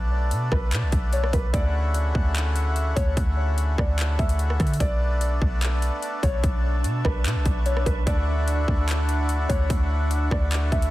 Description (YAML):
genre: hip hop, atmospheric cloud-rap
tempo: 147 BPM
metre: 4/4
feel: half-time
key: unclear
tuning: A4 = 441 Hz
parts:
  - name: accordion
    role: sustained chords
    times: 0.0-10.9 s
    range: C#3 to F#4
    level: -31 LUFS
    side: left 1 dB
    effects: sidechain pumping
  - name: soft 808-style bass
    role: bass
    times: 0.0-10.9 s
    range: B1 to D3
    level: -23 LUFS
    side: equal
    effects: none
  - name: trap drum kit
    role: drums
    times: 0.3-10.9 s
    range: handclaps, hi-hat, kick drum, rim click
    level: -25 LUFS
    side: equal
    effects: overdrive
  - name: felt-muted upright piano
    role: melody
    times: 0.5-10.9 s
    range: B4 to E5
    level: -32 LUFS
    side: left 1 dB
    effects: low-pass filter, digital delay
  - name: wind-like tuned noise texture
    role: texture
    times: 5.2-10.9 s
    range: D4 to C#6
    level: -35 LUFS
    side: right 2 dB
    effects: built-in reverb
room: little or no reverb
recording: dense, heavily limited modern master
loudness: -21 LUFS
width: side -16 dB against mid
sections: 0.0-10.9 A section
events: none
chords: 0.0 Bm7; 1.5 Dmaj7; 4.8 Bm9; 8.1 Dmaj7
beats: 0.31 0.72 1.13 | 1.54 1.95 2.35 2.76 | 3.17 3.58 3.99 4.39 | 4.80 5.21 5.62 6.03 | 6.43 6.84 7.25 7.66 | 8.07 8.48 8.88 9.29 | 9.70 10.11 10.52